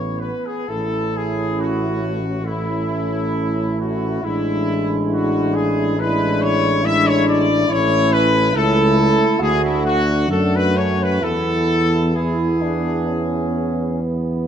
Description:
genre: classical, hymn-like piece for brass band.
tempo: 68 BPM.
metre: 4/4.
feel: uneven beats, rubato.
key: A major.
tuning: A4 = 442 Hz.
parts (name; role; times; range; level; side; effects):
bright trumpet section; melody; 0.0-14.0 s; E4 to E5; -21 LUFS; left 4 dB; none.
mellow flugelhorn; second line; 0.0-14.5 s; B3 to F#4; -23 LUFS; right 7 dB; none.
clear euphonium; accompaniment; 0.0-14.5 s; E3 to A3; -26 LUFS; right 3 dB; none.
mellow tuba; bass; 0.0-14.5 s; A1 to F#2; -22 LUFS; equal; none.
mellow trombone section; accompaniment; 0.7-14.5 s; B3 to D4; -25 LUFS; left 3 dB; none.
room: wet recital hall reverb, RT60 1.8 s.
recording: none.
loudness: -16 LUFS.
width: side -8 dB against mid.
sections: 0.7-14.5 A section.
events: none.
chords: 0.0 A; 4.2 E7/A; 7.7 A; 9.4 D; 11.2 E.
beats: | 0.70 1.61 2.45 3.34 | 4.23 5.12 5.98 6.84 | 7.68 8.54 9.40 10.30 | 11.22 12.16 13.10 14.04.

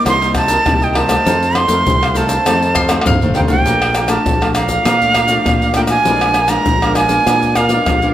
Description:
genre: samba and choro.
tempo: 100 BPM.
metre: 4/4.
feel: straight.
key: Bb major.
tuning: A4 = 444 Hz.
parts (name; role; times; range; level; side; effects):
breathy bright jazz flute; melody; 0.0-8.1 s; F5 to C6; -15 LUFS; right 2 dB; none.
cavaquinho; accompaniment; 0.0-8.1 s; Eb4 to Bb5; -23 LUFS; right 2 dB; none.
nylon-string guitar; accompaniment; 0.0-8.1 s; F2 to Eb4; -21 LUFS; left 3 dB; none.
fingered electric bass; bass; 0.1-8.1 s; Bb1 to Bb2; -19 LUFS; equal; none.
egg shaker, surdo, pandeiro and tamborim; percussion; 0.1-8.1 s; none; -17 LUFS; left 2 dB; none.
bowl-back mandolin; second line; 2.8-3.6 s; F5 to C6; -21 LUFS; left 4 dB; none.
room: moderate large studio reverb, RT60 1.3 s.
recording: none.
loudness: -11 LUFS.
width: side -12 dB against mid.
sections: 0.0-3.7 A section; 3.7-8.1 B section.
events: drum fill 2.9-3.7.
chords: 0.0 Cm7; 1.3 F7; 3.7 Bbmaj7; 6.1 Bb7b9.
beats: 0.06 0.66 | 1.26 1.86 2.46 3.06 | 3.66 4.26 4.87 5.47 | 6.07 6.67 7.27 7.87.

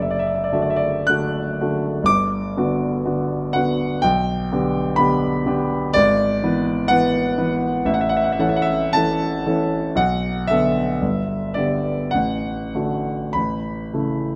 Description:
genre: classical, romantic nocturne for solo piano.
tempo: 46-65 BPM.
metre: 4/4.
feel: rubato.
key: D major.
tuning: A4 = 440 Hz.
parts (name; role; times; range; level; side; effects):
warm grand piano; solo; 0.0-14.4 s; F#1 to F#6; -20 LUFS; equal; none.
room: light reverb.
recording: close, detailed microphones, lossy compression artefacts.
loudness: -20 LUFS.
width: mono.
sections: 0.0-14.4 A section.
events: none.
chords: 0.0 D/F#; 2.1 Gmaj7; 4.0 G/B; 6.0 E7/G#; 7.8 A; 10.0 Bm7; 11.0 G6; 12.1 D/A; 13.4 A.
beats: 1.08 | 2.08 3.05 4.04 4.97 | 5.95 6.89 7.84 8.94 | 9.97 11.02 12.13 13.37.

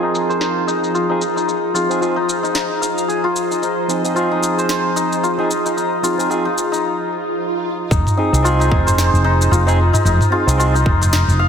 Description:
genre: organic downtempo.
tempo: 112 BPM.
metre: 4/4.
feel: swing 58% on 16ths.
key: F minor pentatonic.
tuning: A4 = 440 Hz.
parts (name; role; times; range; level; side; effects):
barky tine electric piano; accompaniment; 0.0-10.7 s; F3 to Ab4; -22 LUFS; right 3 dB; overdrive, sidechain pumping, ping-pong delay.
bowed-like drone; sustained chords; 0.0-6.8 s; F3 to Eb5; -24 LUFS; equal; built-in reverb, sidechain pumping.
santur; arpeggios; 0.0-11.5 s; Eb4 to Ab5; -19 LUFS; left 2 dB; low-pass filter, ping-pong delay.
afro-pop drum kit; drums; 0.1-11.4 s; shaker, snare drum, toms; -22 LUFS; equal; low-pass filter on perc, soft clipping on snare, low-pass filter on snare, low-pass filter on toms.
swell; sound effects; 7.0-7.9 s; none; -26 LUFS; right 3 dB; none.
woody fretless electric bass; bass; 7.9-11.5 s; F1 to C2; -15 LUFS; equal; none.
electronic kick drum; drums; 7.9-11.0 s; none; -16 LUFS; equal; overdrive.
room: moderate scoring stage reverb, RT60 2.0 s.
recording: dense, heavily limited modern master.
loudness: -15 LUFS.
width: side -7 dB against mid.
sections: 0.0-7.9 A section; 7.9-11.5 B section.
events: break 6.8-7.9; swell 7.0-7.9.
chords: 0.0 Fm7.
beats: 0.41 0.95 | 1.48 2.02 2.56 3.09 | 3.63 4.16 4.70 5.23 | 5.77 6.30 6.84 7.38 | 7.91 8.45 8.98 9.52 | 10.05 10.59 11.13.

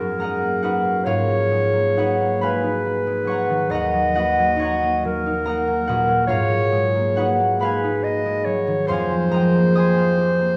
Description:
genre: classical, impressionist duo for clarinet and harp.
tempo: 46 BPM (dotted quarters).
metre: 6/8.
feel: uneven beats, rubato.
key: G# dorian.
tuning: A4 = 438 Hz.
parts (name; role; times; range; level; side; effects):
bright clarinet; melody; 0.0-10.6 s; A#4 to D#5; -25 LUFS; equal; none.
concert harp; accompaniment; 0.0-10.6 s; D#2 to Eb6; -22 LUFS; equal; none.
room: wet recital hall reverb, RT60 1.7 s.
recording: recorded in a church or concert hall.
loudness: -20 LUFS.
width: mono.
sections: 0.0-10.6 A section.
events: none.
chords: 0.0 F#69; 1.1 G#m9; 3.7 D#m7; 6.3 G#m9; 8.9 Fm11.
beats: | 1.06 2.43 | 3.72 5.04 | 6.28 7.61 | 8.87 10.16.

